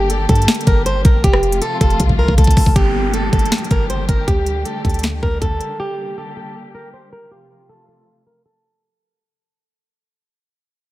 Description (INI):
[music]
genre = hip hop, trap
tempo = 158 BPM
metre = 4/4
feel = half-time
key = G minor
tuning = A4 = 440 Hz
[part]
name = fingerpicked plugged-in swing-style acoustic guitar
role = melody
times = 0.0-8.8 s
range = G4 to C5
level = -21 LUFS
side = right 1 dB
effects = low-pass filter, digital delay
[part]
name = dark symphonic string section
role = sustained chords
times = 0.0-8.8 s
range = C3 to G4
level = -27 LUFS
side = left 2 dB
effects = low-pass filter
[part]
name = warm 808-style bass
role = bass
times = 0.0-5.6 s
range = F1 to G2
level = -18 LUFS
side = equal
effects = none
[part]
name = trap drum kit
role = drums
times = 0.1-5.7 s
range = hi-hat, kick drum, rim click, snare drum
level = -15 LUFS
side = equal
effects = overdrive
[part]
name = downlifter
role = sound effects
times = 2.8-5.8 s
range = none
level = -26 LUFS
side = right 1 dB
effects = none
[sound]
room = digital ambience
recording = none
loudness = -13 LUFS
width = side -16 dB against mid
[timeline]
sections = 0.0-2.8 A section; 2.8-8.8 B section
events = drum fill 2.0-2.8; fade-out 2.8-8.8; filter sweep 2.8-8.8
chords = 0.0 Gm; 1.2 F; 2.8 Gm; 4.3 Dsus4; 5.8 Gm; 7.3 F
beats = 0.10 0.48 0.86 | 1.24 1.62 2.00 2.38 | 2.76 3.14 3.52 3.90 | 4.28 4.66 5.04 5.42 | 5.80 6.18 6.56 6.94 | 7.32 7.70 8.07 8.46